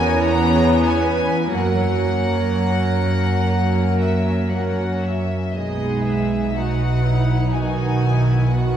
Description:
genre	classical, slow romantic movement for string orchestra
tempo	60 BPM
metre	4/4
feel	rubato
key	B major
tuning	A4 = 440 Hz
part	rich studio violin section	melody	0.0-8.8 s	D#5 to A#5	-26 LUFS	left 4 dB	none
part	dark studio violin section	second line	0.0-8.8 s	C#4 to C#5	-27 LUFS	left 3 dB	none
part	rich studio viola section	accompaniment	0.0-8.8 s	D#3 to D#4	-22 LUFS	right 1 dB	none
part	dark studio double bass section	bass	0.0-8.8 s	B1 to F#2	-20 LUFS	right 2 dB	none
part	warm studio cello section	bass	0.0-8.8 s	D#4 to B4	-28 LUFS	right 3 dB	none
room	wet concert hall reverb, RT60 2.0 s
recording	heard from further back in the room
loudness	-17 LUFS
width	side -9 dB against mid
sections	0.0-8.8 A section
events	none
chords	0.0 C#m7/E; 1.5 F#; 5.5 B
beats	0.54 | 1.51 2.50 3.50 4.51 | 5.54 6.54 7.53 8.52

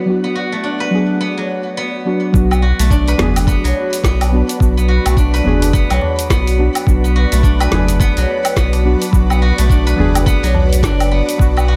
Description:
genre	organic downtempo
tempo	106 BPM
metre	4/4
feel	swing 59% on 16ths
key	B dorian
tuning	A4 = 440 Hz
part	deep mellow chord stab	accompaniment	0.0-11.8 s	F#3 to G#4	-23 LUFS	equal	chorus, sidechain pumping, digital delay
part	ethereal airy pad	sustained chords	0.0-11.8 s	B3 to B5	-27 LUFS	equal	ensemble chorus, built-in reverb, phaser, sidechain pumping
part	steel-string zither	arpeggios	0.0-11.8 s	F#3 to B4	-22 LUFS	equal	vintage 12-bit sampler grit, digital delay
part	warm sub bass	bass	2.3-11.8 s	F#1 to B1	-17 LUFS	equal	sidechain pumping
part	electronic kick drum	drums	2.3-11.5 s	none	-17 LUFS	equal	none
part	deep house drum kit	drums	2.4-11.7 s	cabasa, hi-hat, snare drum, woodblock	-24 LUFS	equal	low-pass filter on perc, low-pass filter on hats, low-pass filter on snare, low-pass filter on room
part	tabla	percussion	2.8-10.8 s	none	-26 LUFS	equal	none
room	digital ambience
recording	none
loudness	-14 LUFS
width	mono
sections	0.0-2.3 A section; 2.3-11.8 B section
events	none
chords	0.0 Bm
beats	| 0.07 0.64 1.21 1.77 | 2.34 2.90 3.47 4.04 | 4.60 5.17 5.74 6.30 | 6.87 7.43 8.00 8.56 | 9.13 9.70 10.26 10.83 | 11.39

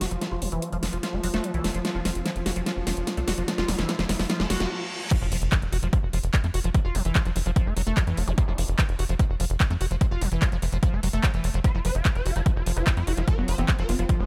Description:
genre	psychedelic trance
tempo	147 BPM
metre	4/4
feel	straight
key	F major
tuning	A4 = 440 Hz
part	bubbling stepped-filter texture	sustained chords	0.0-4.7, 12.2-14.3 s	F3	-38 LUFS	equal	chorus, built-in reverb, sidechain pumping
part	liquid acid bass	riff	0.0-14.3 s	E3 to Gb4	-35 LUFS	equal	chorus, sidechain pumping, delay
part	tight sequencer bass	bass	0.0-14.3 s	F1 to F2	-29 LUFS	equal	none
part	big-room dance drum kit	drums	0.0-14.2 s	crash cymbal, handclaps, hi-hat, snare drum	-32 LUFS	equal	none
part	riser, reverse cymbal, impact and zap	sound effects	2.0-8.4 s	none	-40 LUFS	equal	none
part	electronic kick drum	drums	5.1-14.2 s	none	-25 LUFS	equal	none
part	swarming rave lead	melody	11.6-14.3 s	C4 to C5	-35 LUFS	equal	chorus, phaser, vintage 12-bit sampler grit, sidechain pumping, delay
part	resonant blip pluck	second line	12.8-14.1 s	C4 to F4	-42 LUFS	equal	chorus, phaser, sidechain pumping, high-pass filter, dub echo
room	light reverb, digital ambience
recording	none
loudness	-25 LUFS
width	mono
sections	0.0-5.1 A section; 5.1-14.3 B section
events	build-up 0.0-5.1; drum fill 0.0-4.7; filter sweep on acid bass 0.0-5.1; reverse cymbal 4.3-5.1; stop 4.7-5.1; drop 5.1-14.3; impact 5.1-6.7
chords	0.0 F5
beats	| 0.21 0.62 1.03 1.44 | 1.85 2.26 2.66 3.07 | 3.48 3.89 4.30 4.71 | 5.11 5.52 5.93 6.34 | 6.75 7.15 7.56 7.97 | 8.38 8.79 9.19 9.60 | 10.01 10.42 10.83 11.23 | 11.64 12.05 12.46 12.87 | 13.28 13.68 14.09

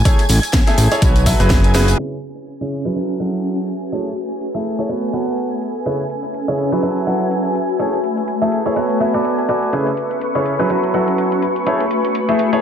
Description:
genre	piano house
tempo	124 BPM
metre	4/4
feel	swing 57% on 16ths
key	unclear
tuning	A4 = 442 Hz
part	analog string pad	sustained chords	0.0-12.6 s	B4 to G#6	-26 LUFS	left 1 dB	ensemble chorus, sidechain pumping
part	fat analog bass	bass	0.0-1.9 s	F#1 to B1	-14 LUFS	equal	tube saturation, sidechain pumping
part	bright baby grand piano	riff	0.1-12.6 s	C#3 to F#5	-19 LUFS	right 1 dB	sidechain pumping, low-pass filter, analog delay
part	electronic kick drum	drums	0.1-1.6 s	none	-15 LUFS	equal	overdrive
part	garage drum kit	drums	0.1-12.6 s	hi-hat, snare drum, tambourine	-23 LUFS	left 1 dB	low-pass filter on hats, low-pass filter on perc, low-pass filter on snare
part	modern studio drum kit	drums	0.1-2.0 s	hi-hat, snare drum	-33 LUFS	left 4 dB	none
part	tambourine	percussion	0.1-2.0 s	none	-31 LUFS	right 10 dB	analog delay
part	granular cloud pad	texture	2.5-12.6 s	A3 to G#5	-22 LUFS	left 2 dB	built-in reverb, sidechain pumping
room	moderate echo chamber reverb, RT60 1.3 s, small room ambience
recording	echo-heavy mix, low-pass filter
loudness	-15 LUFS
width	side -8 dB against mid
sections	0.0-2.0 A section; 2.0-12.6 B section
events	drum fill 1.7; band accent 1.7; filter sweep on grand piano 2.0-12.6; filter sweep 2.0-12.6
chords	0.0 Amaj7; 1.0 B5; 1.5 F#9sus4; 2.0 C#m7; 3.0 F#m7; 3.7 Amaj7; 4.9 B5; 5.9 C#m7; 6.8 F#m7; 7.6 Amaj7; 8.8 Bm7; 9.7 C#m7; 10.7 F#m7; 11.4 Amaj7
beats	| 0.05 0.54 1.02 1.50 | 1.99 2.47 2.96 3.44 | 3.92 4.41 4.89 5.38 | 5.86 6.34 6.83 7.31 | 7.79 8.28 8.76 9.25 | 9.73 10.21 10.70 11.18 | 11.67 12.15

